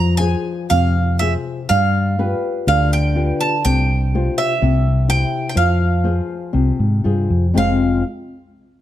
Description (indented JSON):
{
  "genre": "fado-style ballad",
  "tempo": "61 BPM",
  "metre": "2/4",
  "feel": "uneven beats, rubato",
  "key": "F harmonic minor",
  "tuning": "A4 = 440 Hz",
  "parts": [
    { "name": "Irish bouzouki", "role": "melody", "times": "0.0-8.0 s", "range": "E5 to Bb5", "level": "-21 LUFS", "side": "right 3 dB", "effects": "none" },
    { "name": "flamenco guitar", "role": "accompaniment", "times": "0.0-8.0 s", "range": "F2 to C5", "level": "-21 LUFS", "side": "left 4 dB", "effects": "none" },
    { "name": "woody fretless electric bass", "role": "bass", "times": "0.0-8.0 s", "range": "F1 to Ab2", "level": "-17 LUFS", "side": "equal", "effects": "none" }
  ],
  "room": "light reverb",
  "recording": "close, detailed microphones",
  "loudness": "-15 LUFS",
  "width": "side -12 dB against mid",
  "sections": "0.0-7.5 A section; 7.5-8.8 B section",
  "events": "none",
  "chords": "0.0 Fm; 1.7 G7; 3.6 Csus4; 4.6 C; 5.6 Fm"
}